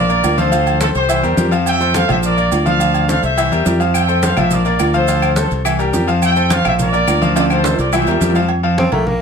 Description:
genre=latin, salsa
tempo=211 BPM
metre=4/4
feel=straight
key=F major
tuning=A4 = 441 Hz
part: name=warm trumpet section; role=melody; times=0.0-8.3 s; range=F4 to G5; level=-18 LUFS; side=equal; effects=none
part: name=bright grand piano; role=accompaniment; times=0.0-9.2 s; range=E3 to Bb5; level=-18 LUFS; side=left 2 dB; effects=none
part: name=fingered electric bass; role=bass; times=0.0-9.2 s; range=Bb1 to F2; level=-18 LUFS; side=equal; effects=none
part: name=agogo bells and timbales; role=percussion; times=0.1-9.1 s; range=none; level=-22 LUFS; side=right 5 dB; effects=none
part: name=congas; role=percussion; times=0.1-9.2 s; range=none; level=-23 LUFS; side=left 1 dB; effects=none
part: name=maracas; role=percussion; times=0.1-8.5 s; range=none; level=-30 LUFS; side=right 8 dB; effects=none
part: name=claves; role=percussion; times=3.9-8.1 s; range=none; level=-27 LUFS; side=left 9 dB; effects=none
part: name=breathy tenor saxophone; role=melody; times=8.8-9.2 s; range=A3 to C4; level=-18 LUFS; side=equal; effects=none
room=moderate studio reverb, RT60 0.6 s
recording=none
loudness=-12 LUFS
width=side -6 dB against mid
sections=0.0-8.5 A section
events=drum fill 7.4-8.5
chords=0.0 Bb; 0.5 Dm7; 1.1 C7; 1.7 Fmaj9; 2.2 Bb; 2.8 Dm7; 3.4 C7; 3.9 Fmaj9; 4.5 Bb; 5.1 Dm7; 5.6 C7; 6.2 Fmaj9; 6.8 Bb; 7.4 Dm7; 7.9 C7; 8.5 Fadd11

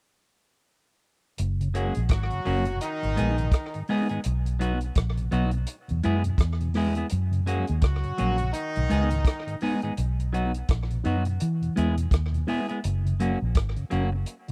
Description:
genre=roots reggae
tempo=84 BPM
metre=4/4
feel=swing 60% on 16ths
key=F# mixolydian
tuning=A4 = 439 Hz
part: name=vintage muted fingered electric bass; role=bass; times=1.4-14.2 s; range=F#1 to E3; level=-28 LUFS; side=equal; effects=none
part: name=vintage drum kit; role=drums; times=1.4-14.5 s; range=hi-hat, kick drum, rim click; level=-28 LUFS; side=equal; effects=slapback echo
part: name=mellow tonewheel organ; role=accompaniment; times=1.6-14.5 s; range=E2 to E4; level=-34 LUFS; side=equal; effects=slow rotary speaker, slapback echo
part: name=warm horn section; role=second line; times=1.7-9.6 s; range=D#3 to G#4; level=-35 LUFS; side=equal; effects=dub echo
part: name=clean electric guitar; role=accompaniment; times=1.7-14.2 s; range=F#3 to G#4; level=-32 LUFS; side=equal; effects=dub echo
room=little or no reverb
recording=dry, close 1970s-style studio recording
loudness=-26 LUFS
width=mono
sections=1.4-12.8 A section; 12.8-14.5 B section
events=none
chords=1.4 F#; 2.8 G#m; 4.2 B; 5.7 E; 7.1 F#; 8.5 G#m; 10.0 B; 11.4 E; 12.8 F#

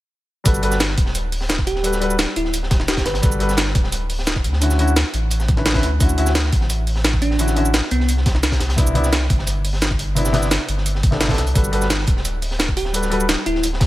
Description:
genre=liquid drum and bass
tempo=173 BPM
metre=4/4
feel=straight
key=G major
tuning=A4 = 440 Hz
part: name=warm concert grand piano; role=accompaniment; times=0.4-13.2 s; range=C3 to B4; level=-23 LUFS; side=left 1 dB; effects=tape echo
part: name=warm sub bass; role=bass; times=0.5-13.9 s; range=D1 to D2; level=-21 LUFS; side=equal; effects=none
part: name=breakbeat sampler-style drum kit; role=drums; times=0.5-13.9 s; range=hi-hat, shaker, snare drum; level=-22 LUFS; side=right 1 dB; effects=none
part: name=crunchy breakbeat drum kit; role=drums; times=0.5-13.9 s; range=hi-hat, snare drum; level=-29 LUFS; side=equal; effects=high-pass filter on hats, high-pass filter on snare, high-pass filter on room
part: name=electronic kick drum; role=drums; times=0.5-13.9 s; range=none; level=-19 LUFS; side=equal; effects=none
part: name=bell-like FM electric piano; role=melody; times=1.7-3.5, 7.2-8.1, 12.8-13.7 s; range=B3 to B4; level=-26 LUFS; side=right 1 dB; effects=chorus, tape echo
room=little or no reverb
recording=none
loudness=-16 LUFS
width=side -16 dB against mid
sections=0.5-13.9 A section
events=drop 0.5-13.9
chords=0.5 Gmaj9; 4.4 Dmaj9; 8.1 Cmaj9; 11.6 Gmaj9

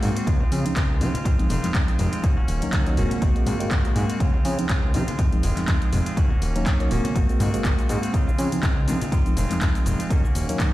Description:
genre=filtered disco house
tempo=122 BPM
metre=4/4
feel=swing 56% on 16ths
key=Eb dorian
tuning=A4 = 435 Hz
part: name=mellow tine electric piano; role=accompaniment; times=0.0-10.7 s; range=F3 to Gb4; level=-27 LUFS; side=equal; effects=medium stereo tremolo, phaser, sidechain pumping, low-pass filter
part: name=direct-recorded clean electric guitar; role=riff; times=0.0-10.7 s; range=Eb3 to Gb4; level=-32 LUFS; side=equal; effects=vintage 12-bit sampler grit, sidechain pumping, low-pass filter
part: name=fat analog bass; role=bass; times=0.0-10.7 s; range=Eb1 to Db3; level=-25 LUFS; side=equal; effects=sidechain pumping, low-pass filter
part: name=punchy analog drum machine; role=drums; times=0.0-10.7 s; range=handclaps, hi-hat, shaker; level=-32 LUFS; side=equal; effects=overdrive, sidechain pumping on hats, sidechain pumping on cymbals, sidechain pumping on perc
part: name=tambourine and congas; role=percussion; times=0.0-10.7 s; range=none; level=-32 LUFS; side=left 1 dB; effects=sidechain pumping on perc, low-pass filter on perc
part: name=electronic kick drum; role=drums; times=0.3-10.7 s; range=none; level=-21 LUFS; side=equal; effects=none
room=light reverb, digital ambience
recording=played on a big sound system in a bare room, stone room reverb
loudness=-20 LUFS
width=side -16 dB against mid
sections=0.0-10.7 A section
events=none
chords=0.3 Dbmaj9; 1.3 Fm7; 2.2 Ebm7; 3.2 Ab9; 4.2 Dbmaj9; 5.2 Fm7; 6.2 Ebm7; 7.2 Ab9; 8.1 Dbmaj9; 9.1 Fm7; 10.1 Ebm7

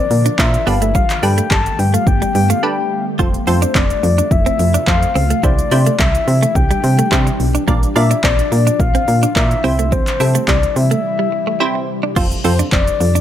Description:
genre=dance-pop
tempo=107 BPM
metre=4/4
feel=straight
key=F major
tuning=A4 = 441 Hz
part: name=soft octave-layered synth lead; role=melody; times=0.0-13.2 s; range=C5 to A5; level=-19 LUFS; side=left 5 dB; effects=chorus, digital delay
part: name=ethereal airy pad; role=sustained chords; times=0.0-13.2 s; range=Bb2 to Bb4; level=-25 LUFS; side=left 1 dB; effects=ensemble chorus, built-in reverb, sidechain pumping
part: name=direct-recorded clean electric guitar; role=riff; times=0.0-13.2 s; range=G3 to F4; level=-22 LUFS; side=right 5 dB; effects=wide subtle chorus
part: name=solid FM bass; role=bass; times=0.1-13.2 s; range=F1 to C3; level=-16 LUFS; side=equal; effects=sidechain pumping
part: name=deep house drum kit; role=drums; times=0.1-13.2 s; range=crash cymbal, handclaps, hi-hat, kick drum, shaker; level=-18 LUFS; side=equal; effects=none
part: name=wavetable chord stab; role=accompaniment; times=0.4-13.2 s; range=C4 to D5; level=-21 LUFS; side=right 3 dB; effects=sidechain pumping
room=digital ambience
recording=none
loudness=-12 LUFS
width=side -11 dB against mid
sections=0.0-12.2 A section; 12.2-13.2 A section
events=break 2.6-3.2, 11.0-12.2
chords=0.0 Bb; 0.7 Gadd9; 3.2 F; 5.4 Cadd9; 7.7 Bb; 9.6 C; 12.2 F

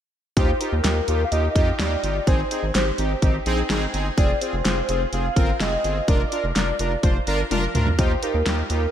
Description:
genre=synth-pop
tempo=126 BPM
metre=4/4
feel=straight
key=unclear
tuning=A4 = 440 Hz
part: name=warm velvety synth lead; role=melody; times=0.4-8.9 s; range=Bb4 to F5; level=-27 LUFS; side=equal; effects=chorus, diffuse ambient delay
part: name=analog synth brass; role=accompaniment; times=0.4-8.8 s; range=C4 to C5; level=-26 LUFS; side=equal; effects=chorus
part: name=round analog bass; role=bass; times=0.4-8.9 s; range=F1 to F2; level=-24 LUFS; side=equal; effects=none
part: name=pop drum kit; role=drums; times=0.4-8.8 s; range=hi-hat, kick drum, snare drum, toms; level=-22 LUFS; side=equal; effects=none
room=moderate plate reverb, RT60 1.8 s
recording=dreamy mix soaked in reverb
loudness=-19 LUFS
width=side -10 dB against mid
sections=0.4-8.9 A section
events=drum fill 7.5-8.0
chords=0.4 Ebadd9; 2.3 Ab; 4.2 Fm; 6.1 Bb/F; 8.0 Ebadd9

